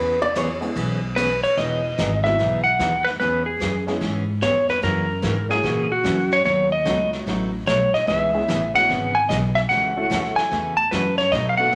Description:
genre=country, western swing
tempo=148 BPM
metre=4/4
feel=swing 65% on 8ths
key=E major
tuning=A4 = 441 Hz
part: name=hollow-body jazz guitar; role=second line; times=0.0-0.5 s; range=B4 to D5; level=-25 LUFS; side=equal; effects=none
part: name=picked steel-string acoustic guitar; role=accompaniment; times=0.0-11.8 s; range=B2 to G#4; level=-30 LUFS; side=equal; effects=none
part: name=upright bass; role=bass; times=0.0-11.7 s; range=E1 to B2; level=-29 LUFS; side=equal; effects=none
part: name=vintage brush drum kit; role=drums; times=0.4-11.8 s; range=brushed snare drum, hi-hat, ride cymbal, snare drum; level=-35 LUFS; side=equal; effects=none
part: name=honky-tonk upright piano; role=accompaniment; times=0.6-11.8 s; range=F#3 to A4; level=-32 LUFS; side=equal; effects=none
part: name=clean lap steel guitar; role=melody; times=1.2-11.8 s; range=F#4 to A5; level=-22 LUFS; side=equal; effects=none
room=moderate large studio reverb, RT60 1.3 s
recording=none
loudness=-21 LUFS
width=mono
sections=0.0-1.6 A section; 1.6-11.8 B section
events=hollow-body jazz guitar solo 0.0-1.6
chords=0.0 E6; 1.6 Emaj9; 3.2 C#m7/E; 4.8 F#7; 6.5 B9; 8.1 C#m7; 9.7 F#m7/C#

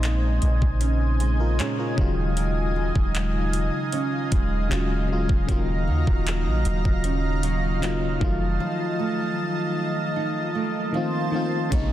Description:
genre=contemporary R&B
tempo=77 BPM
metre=4/4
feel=straight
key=unclear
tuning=A4 = 440 Hz
part: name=FM electric piano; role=accompaniment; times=0.0-11.9 s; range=C3 to Db5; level=-28 LUFS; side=left 4 dB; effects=chorus
part: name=lush unison pad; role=sustained chords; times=0.0-11.9 s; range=Eb4 to C6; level=-30 LUFS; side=right 1 dB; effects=chorus
part: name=nylon-string guitar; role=arpeggios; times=0.0-11.9 s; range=Bb2 to Db5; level=-30 LUFS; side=right 8 dB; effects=digital delay
part: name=soft 808-style bass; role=bass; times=0.0-11.9 s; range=Eb1 to Bb2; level=-24 LUFS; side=equal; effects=none
part: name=smooth R&B drum kit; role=drums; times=0.0-11.9 s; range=handclaps, hi-hat, kick drum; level=-26 LUFS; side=equal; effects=none
part: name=swell and downlifter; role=sound effects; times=10.7-11.9 s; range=none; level=-36 LUFS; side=left 1 dB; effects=none
room=little or no reverb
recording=dense, heavily limited modern master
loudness=-21 LUFS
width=side -12 dB against mid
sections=0.0-11.7 A section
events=drums muted 8.6-11.7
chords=0.0 Bbm11; 2.0 Ebm11; 8.2 F7b9; 10.9 F7

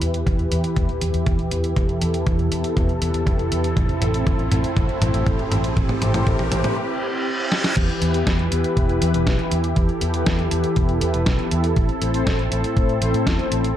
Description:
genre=italo disco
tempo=120 BPM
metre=4/4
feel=straight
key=E minor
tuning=A4 = 443 Hz
part: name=warm analog pad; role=sustained chords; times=0.0-13.8 s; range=E3 to B4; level=-25 LUFS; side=right 1 dB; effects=chorus
part: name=mellow synth brass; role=stabs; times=0.0-13.7 s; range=A2 to C5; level=-28 LUFS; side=left 4 dB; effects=chorus, ping-pong delay
part: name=vintage muted fingered electric bass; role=bass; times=0.0-13.7 s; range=E1 to A2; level=-23 LUFS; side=equal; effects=none
part: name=detuned 8-bit digital drum machine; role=drums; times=0.0-13.7 s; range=crash cymbal, hi-hat, snare drum, toms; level=-26 LUFS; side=equal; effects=none
part: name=riser and reverse cymbal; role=sound effects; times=2.2-7.8 s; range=none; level=-30 LUFS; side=equal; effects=none
part: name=electronic kick drum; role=drums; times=0.3-13.4 s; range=none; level=-22 LUFS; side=equal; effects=none
room=light reverb, digital ambience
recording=dark, warm production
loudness=-18 LUFS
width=side -11 dB against mid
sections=0.0-7.8 A section; 7.8-13.8 B section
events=drum fill 0.0-6.8, 7.5; filter sweep on analog polysynth 0.0-7.8; riser 2.2-6.8; break 6.8-7.8; reverse cymbal 6.8-7.8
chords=0.0 Em; 3.8 Am; 7.8 Em; 11.8 Am

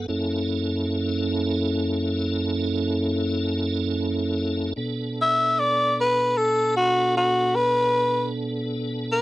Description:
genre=blues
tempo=51 BPM (dotted quarters)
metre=12/8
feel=straight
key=B minor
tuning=A4 = 436 Hz
part: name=tonewheel organ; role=sustained chords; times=0.0-9.2 s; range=F#2 to A4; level=-24 LUFS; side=right 1 dB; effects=slow rotary speaker, chorus vibrato
part: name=growling tenor saxophone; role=melody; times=5.2-9.2 s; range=F#4 to E5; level=-19 LUFS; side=left 1 dB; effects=none
room=light reverb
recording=dry, close 1970s-style studio recording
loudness=-21 LUFS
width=side -17 dB against mid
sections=0.0-9.2 A section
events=none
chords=0.1 F#7#9; 4.8 Bm7

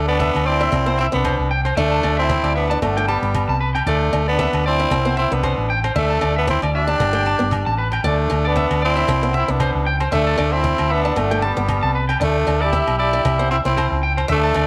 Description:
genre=highlife guitar band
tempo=115 BPM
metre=4/4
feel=swing 55% on 16ths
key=unclear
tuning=A4 = 443 Hz
part: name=growling tenor saxophone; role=melody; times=0.0-14.7 s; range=G3 to E4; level=-24 LUFS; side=equal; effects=none
part: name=breathy trumpet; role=second line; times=0.0-14.7 s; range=B3 to G4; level=-29 LUFS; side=equal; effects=none
part: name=picked old ladder-braced acoustic guitar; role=accompaniment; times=0.0-14.6 s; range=A3 to D4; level=-30 LUFS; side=equal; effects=none
part: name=hollow-body short-scale fingered electric bass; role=bass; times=0.0-14.7 s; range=G1 to D2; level=-24 LUFS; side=equal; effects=none
part: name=electric guitar at the edge of break-up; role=arpeggios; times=0.1-14.6 s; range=B4 to A5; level=-26 LUFS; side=equal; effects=slapback echo
part: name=cajon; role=drums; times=0.2-14.7 s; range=none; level=-31 LUFS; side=equal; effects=none
part: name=agogo bells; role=percussion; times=0.4-14.7 s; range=none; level=-32 LUFS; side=equal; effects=none
room=moderate echo chamber reverb, RT60 1.8 s, studio reverb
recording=none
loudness=-19 LUFS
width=mono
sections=0.0-14.7 A section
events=none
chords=0.0 Dsus2; 0.7 C; 1.8 Dsus2; 2.8 Gadd9; 3.9 Dsus2; 4.9 C; 6.0 Dsus2; 7.0 Gadd9; 8.0 Dsus2; 9.1 C; 10.1 Dsus2; 11.2 Gadd9; 12.2 Dsus2; 13.3 C

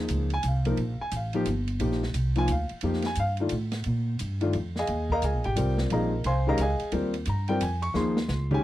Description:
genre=modal jazz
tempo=176 BPM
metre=3/4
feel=swing 64% on 8ths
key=unclear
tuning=A4 = 440 Hz
part: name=warm grand piano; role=accompaniment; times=0.0-8.6 s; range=Eb3 to Db6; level=-28 LUFS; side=left 1 dB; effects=none
part: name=upright bass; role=bass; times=0.0-8.6 s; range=G1 to Bb2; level=-28 LUFS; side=right 1 dB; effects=none
part: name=open jazz drum kit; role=drums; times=0.1-8.6 s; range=hi-hat, kick drum, ride cymbal, snare drum, toms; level=-37 LUFS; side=right 1 dB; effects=none
room=little or no reverb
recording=dry, close 1970s-style studio recording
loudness=-25 LUFS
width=side -14 dB against mid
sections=0.0-8.6 A section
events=drum fill 8.0-8.6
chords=0.0 Eb13sus4; 0.8 F9sus4; 4.9 Eb13sus4

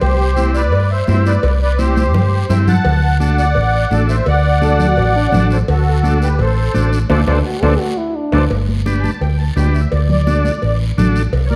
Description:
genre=latin, cumbia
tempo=170 BPM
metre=4/4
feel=straight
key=unclear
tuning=A4 = 440 Hz
part: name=musette accordion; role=melody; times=0.0-11.6 s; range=F#4 to A5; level=-22 LUFS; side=equal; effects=none
part: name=hollow-body short-scale fingered electric bass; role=bass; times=0.0-11.6 s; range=G1 to G2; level=-17 LUFS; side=equal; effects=none
part: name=congas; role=percussion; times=0.0-11.6 s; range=none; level=-24 LUFS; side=equal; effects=none
part: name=cowbell and timbales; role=percussion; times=0.0-11.5 s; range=none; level=-28 LUFS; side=equal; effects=none
part: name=guiro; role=percussion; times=0.0-11.6 s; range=none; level=-38 LUFS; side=equal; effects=none
part: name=combo organ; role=accompaniment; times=0.4-11.2 s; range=C4 to B4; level=-25 LUFS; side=equal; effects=none
part: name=bright trombone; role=second line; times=4.6-8.5 s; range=D4 to A4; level=-24 LUFS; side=equal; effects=none
room=moderate large studio reverb, RT60 1.3 s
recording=dark, warm production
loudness=-15 LUFS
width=mono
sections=0.0-8.5 A section; 8.5-11.6 B section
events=drum fill 2.0-2.9, 7.8-8.5; band accent 7.1-8.5; accordion solo 8.5-11.6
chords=0.0 C; 2.9 D7; 8.5 G; 9.9 D

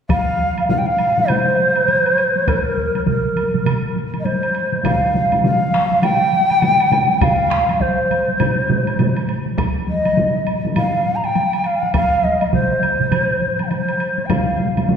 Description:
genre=japanese traditional, taiko drum ensemble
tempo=101 BPM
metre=4/4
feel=swing 60% on 16ths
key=F suspended pentatonic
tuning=A4 = 441 Hz
part: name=breathy mellow long shakuhachi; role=melody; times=0.1-14.9 s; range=Bb4 to Bb5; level=-17 LUFS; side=equal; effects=none
part: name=taiko ensemble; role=percussion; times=0.1-15.0 s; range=none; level=-22 LUFS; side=equal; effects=none
part: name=taiko ensemble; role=percussion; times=0.1-15.0 s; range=none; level=-24 LUFS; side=equal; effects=none
part: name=woodblock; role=percussion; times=0.1-14.9 s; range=none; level=-31 LUFS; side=right 2 dB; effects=none
part: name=taiko ensemble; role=percussion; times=0.7-15.0 s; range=none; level=-23 LUFS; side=left 2 dB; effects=none
part: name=solo taiko drums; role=percussion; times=3.1-13.3 s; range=none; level=-23 LUFS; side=right 5 dB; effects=none
room=wet scoring stage reverb, RT60 2.0 s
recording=heard from further back in the room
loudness=-15 LUFS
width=side -7 dB against mid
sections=0.1-15.0 A section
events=none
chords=none

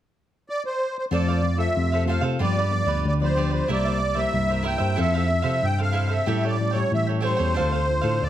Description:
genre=samba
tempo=93 BPM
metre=4/4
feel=straight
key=F major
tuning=A4 = 439 Hz
part: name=musette accordion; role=melody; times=0.5-8.3 s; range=C5 to G5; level=-25 LUFS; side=right 1 dB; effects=none
part: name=cavaquinho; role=accompaniment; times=1.1-8.3 s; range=D4 to G5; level=-30 LUFS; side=right 4 dB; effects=none
part: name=nylon-string guitar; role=accompaniment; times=1.1-8.3 s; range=G2 to A4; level=-29 LUFS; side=left 5 dB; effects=none
part: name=tine electric piano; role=bass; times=1.1-8.3 s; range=C2 to C3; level=-24 LUFS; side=equal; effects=fast stereo tremolo
room=moderate large studio reverb, RT60 1.4 s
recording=none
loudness=-21 LUFS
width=side -12 dB against mid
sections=0.0-1.1 A section; 1.1-8.3 B section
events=none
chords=0.0 N.C.; 1.1 F; 2.4 G7; 3.7 C7; 5.0 Fmaj7; 6.3 A7; 7.6 Dm7

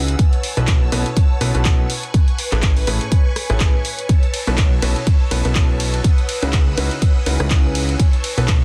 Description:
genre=piano house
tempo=123 BPM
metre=4/4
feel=swing 56% on 16ths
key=B mixolydian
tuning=A4 = 440 Hz
part: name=string machine, violins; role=sustained chords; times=0.0-8.6 s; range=B4 to E6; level=-34 LUFS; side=equal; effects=ensemble chorus, sidechain pumping
part: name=clear upright piano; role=riff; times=0.0-8.5 s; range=A2 to B4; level=-28 LUFS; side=equal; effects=sidechain pumping, delay
part: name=fat analog bass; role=bass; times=0.0-8.6 s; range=A1 to C#2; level=-22 LUFS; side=equal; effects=sidechain pumping
part: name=airy breathy pad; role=texture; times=0.0-8.6 s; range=B4 to A5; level=-33 LUFS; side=equal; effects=chorus, sidechain pumping
part: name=punchy analog drum machine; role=drums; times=0.1-8.6 s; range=handclaps, hi-hat, ride cymbal, rim click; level=-27 LUFS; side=equal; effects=none
part: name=electronic kick drum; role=drums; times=0.2-8.6 s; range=none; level=-17 LUFS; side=equal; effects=none
room=digital ambience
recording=dense, heavily limited modern master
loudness=-17 LUFS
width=mono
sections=0.0-8.6 A section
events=none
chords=0.2 B9sus4; 1.9 Amaj9; 4.1 B9sus4; 6.0 C#m11; 8.0 B9sus4

